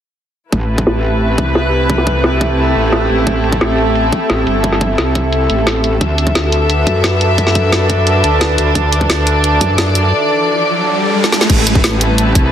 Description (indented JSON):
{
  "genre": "dark technical drum and bass",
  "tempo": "175 BPM",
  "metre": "4/4",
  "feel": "straight",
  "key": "A dorian",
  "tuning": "A4 = 440 Hz",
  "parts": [
    { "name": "dark studio string section", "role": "sustained chords", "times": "0.5-12.5 s", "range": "A3 to E5", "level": "-16 LUFS", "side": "equal", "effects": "sidechain pumping" },
    { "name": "metallic wobble bass", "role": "bass", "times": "0.5-12.5 s", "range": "G1 to F#2", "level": "-16 LUFS", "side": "equal", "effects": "chorus, overdrive" },
    { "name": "drum and bass drum kit", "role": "drums", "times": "0.5-12.4 s", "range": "crash cymbal, hi-hat, snare drum", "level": "-16 LUFS", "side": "equal", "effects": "low-pass filter on hats, low-pass filter on snare, low-pass filter on cymbals, low-pass filter on room" },
    { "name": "electronic kick drum", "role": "drums", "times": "0.5-12.4 s", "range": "none", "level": "-16 LUFS", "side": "equal", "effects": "high-pass filter on kick, high-pass filter on room" },
    { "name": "airy breathy pad", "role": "texture", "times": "0.5-12.5 s", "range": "G3 to E5", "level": "-20 LUFS", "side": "equal", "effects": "chorus, sidechain pumping" },
    { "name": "riser", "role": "sound effects", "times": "10.2-11.5 s", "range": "none", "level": "-20 LUFS", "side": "equal", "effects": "none" }
  ],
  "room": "moderate digital room reverb, RT60 1.1 s, digital ambience",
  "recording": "dense, heavily limited modern master",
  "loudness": "-11 LUFS",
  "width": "side -9 dB against mid",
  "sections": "0.5-11.5 A section; 11.5-12.5 B section",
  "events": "filter sweep on drum 0.5-11.5; riser 10.2-11.5; drum fill 11.2; drop 11.5-12.5",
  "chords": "0.5 Am; 6.0 D; 11.5 Am"
}